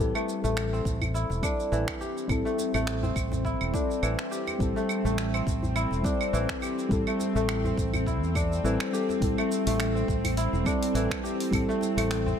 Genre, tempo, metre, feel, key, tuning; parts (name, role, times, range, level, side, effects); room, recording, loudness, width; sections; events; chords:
organic downtempo; 104 BPM; 4/4; swing 55% on 16ths; A minor; A4 = 440 Hz
muted felt-like synth keys; accompaniment; 0.0-12.4 s; G3 to A4; -31 LUFS; left 1 dB; chorus, sidechain pumping, tape echo
kora; arpeggios; 0.0-12.4 s; E3 to G4; -32 LUFS; equal; tape echo
mellow fretless electric bass; bass; 0.0-12.3 s; E1 to E2; -30 LUFS; equal; tube saturation, sidechain pumping
deep house drum kit; drums; 0.0-12.4 s; claves, finger snaps, hi-hat, shaker; -35 LUFS; right 3 dB
djembe; percussion; 0.4-12.4 s; -38 LUFS; equal
bowed-like drone; sustained chords; 1.4-12.4 s; C4; -34 LUFS; equal; built-in reverb, vintage 12-bit sampler grit, sidechain pumping
electronic kick drum; drums; 0.9-11.7 s; -32 LUFS; equal
light reverb; -25 LUFS; side -8 dB against mid
0.0-12.4 A section
0.0 Am7